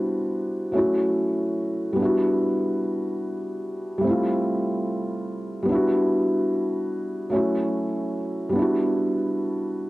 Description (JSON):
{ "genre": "hip hop", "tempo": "73 BPM", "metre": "4/4", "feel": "swing 57% on 16ths", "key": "E dorian", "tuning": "A4 = 441 Hz", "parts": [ { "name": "felt-muted upright piano", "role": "solo", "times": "0.0-9.9 s", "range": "F#3 to C5", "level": "-22 LUFS", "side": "equal", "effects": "low-pass filter, analog delay" } ], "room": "light reverb, small room ambience", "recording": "home recording on cassette", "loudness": "-22 LUFS", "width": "side -18 dB against mid", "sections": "0.0-9.9 A section", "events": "none", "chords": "0.0 Em7; 0.8 F#m7; 2.0 Em7; 4.0 Fmaj9; 5.7 Em7; 7.3 F#m7; 8.6 Em7" }